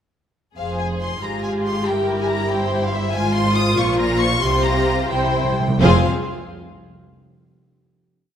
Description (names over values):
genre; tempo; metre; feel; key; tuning
quick classical-period movement for symphony orchestra; 82-96 BPM (dotted quarters); 6/8; rubato; F minor; A4 = 441 Hz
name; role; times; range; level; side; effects
warm chamber violin section; melody; 0.6-6.1 s; E5 to Eb6; -24 LUFS; left 4 dB; none
rich symphonic violin section; second line; 0.6-6.1 s; E4 to C5; -24 LUFS; left 2 dB; none
rich studio double bass section; bass; 0.6-6.1 s; F1 to C2; -25 LUFS; right 2 dB; none
warm studio cello section; bass; 0.6-6.1 s; F2 to C3; -24 LUFS; right 1 dB; none
warm symphonic viola section; accompaniment; 1.2-6.1 s; C4 to C5; -24 LUFS; equal; none
timpani; percussion; 5.1-6.0 s; F2 to C3; -24 LUFS; right 1 dB; none
room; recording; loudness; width
wet scoring stage reverb, RT60 1.6 s; none; -17 LUFS; side -9 dB against mid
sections
0.6-5.8 A section; 5.8-7.2 final chord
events
timpani fill 5.1-5.8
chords
0.6 Fm; 1.9 C7/G; 3.1 Fm/Ab; 3.8 Bbmadd9; 4.4 C7sus4; 5.1 C; 5.8 F5